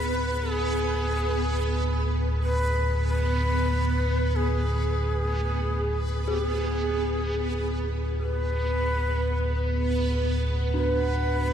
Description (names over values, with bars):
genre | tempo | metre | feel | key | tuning
dark ambient drone | 47 BPM | 4/4 | straight | unclear | A4 = 441 Hz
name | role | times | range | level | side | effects
breathy bright shakuhachi | melody | 0.0-11.5 s | G#4 to B4 | -30 LUFS | equal | ping-pong delay
dark detuned synth bell | arpeggios | 0.0-11.5 s | D4 to G#4 | -36 LUFS | left 2 dB | none
deep rumbling drone | drone | 0.0-11.5 s | D2 to A2 | -26 LUFS | equal | built-in reverb, phaser, lush chorus
backwards swelling texture | texture | 0.0-11.5 s | B3 to B4 | -32 LUFS | equal | built-in reverb
dark analog pad | sustained chords | 9.6-11.5 s | B4 to F#5 | -32 LUFS | right 4 dB | chorus
room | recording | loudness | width
wet huge ambient reverb, RT60 7.9 s | cassette tape | -24 LUFS | side -9 dB against mid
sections
0.0-11.5 A section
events
filter sweep on synth drone 0.0-11.5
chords
0.0 G#dim/D; 8.2 B5